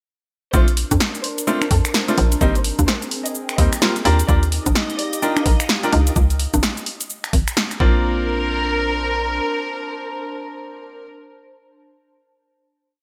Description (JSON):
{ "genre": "UK garage, two-step garage", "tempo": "128 BPM", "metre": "4/4", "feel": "swing 61% on 16ths", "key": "Bb major", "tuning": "A4 = 440 Hz", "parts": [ { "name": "warm studio violin section", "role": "melody", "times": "0.5-11.0 s", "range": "A4 to Eb5", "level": "-28 LUFS", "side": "equal", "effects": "delay" }, { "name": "bright baby grand piano", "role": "stabs", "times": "0.5-11.0 s", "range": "G3 to Bb4", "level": "-26 LUFS", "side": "equal", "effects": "digital delay" }, { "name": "hollow knocking FM bass", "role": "bass", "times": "0.5-9.4 s", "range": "Ab1 to F2", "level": "-22 LUFS", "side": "equal", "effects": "none" }, { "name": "electronic kick drum", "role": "drums", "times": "0.5-7.9 s", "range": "none", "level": "-21 LUFS", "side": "equal", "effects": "none" }, { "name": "punchy analog drum machine", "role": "drums", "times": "0.5-7.8 s", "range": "congas, finger snaps, hi-hat, shaker, snare drum", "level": "-24 LUFS", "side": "equal", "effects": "overdrive" }, { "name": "warbly tape-like pad", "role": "texture", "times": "0.8-11.5 s", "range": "C4 to D6", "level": "-32 LUFS", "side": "equal", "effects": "chorus, built-in reverb, sidechain pumping" }, { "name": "soft string machine", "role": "sustained chords", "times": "4.5-6.2 s", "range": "Eb5", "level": "-36 LUFS", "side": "equal", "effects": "phaser, ensemble chorus, sidechain pumping" } ], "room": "light reverb", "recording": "bright 1980s-style digital production", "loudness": "-19 LUFS", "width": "mono", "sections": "0.5-8.0 drop; 8.0-11.8 final chord", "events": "drop 0.5-8.0", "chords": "0.5 Bbmaj9; 2.4 Abmaj9; 4.1 Ebmaj9; 5.9 Dbadd9; 7.8 Bbadd9" }